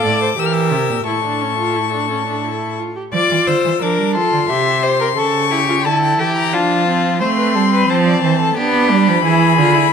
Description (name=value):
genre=classical, baroque-style fugue for string quartet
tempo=88 BPM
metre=3/4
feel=straight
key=D minor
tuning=A4 = 440 Hz
part: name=warm violin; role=melody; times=0.0-9.9 s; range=G5 to F6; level=-19 LUFS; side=left 12 dB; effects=none
part: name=rich violin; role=second line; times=0.0-9.9 s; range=F4 to E5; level=-18 LUFS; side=left 4 dB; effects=none
part: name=clear viola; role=accompaniment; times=0.0-9.9 s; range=C4 to A4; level=-21 LUFS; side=right 2 dB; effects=none
part: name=rich cello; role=bass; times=0.0-9.9 s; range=A2 to B3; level=-18 LUFS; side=right 6 dB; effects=none
room=light reverb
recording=close, detailed microphones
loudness=-13 LUFS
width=side -6 dB against mid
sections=0.0-3.1 A section; 3.1-9.9 B section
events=none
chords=0.4 Edim; 1.1 A; 3.1 Dm; 4.5 C; 5.2 A7/C#; 6.5 Dm/F; 7.2 Am; 8.6 G/B; 9.2 E7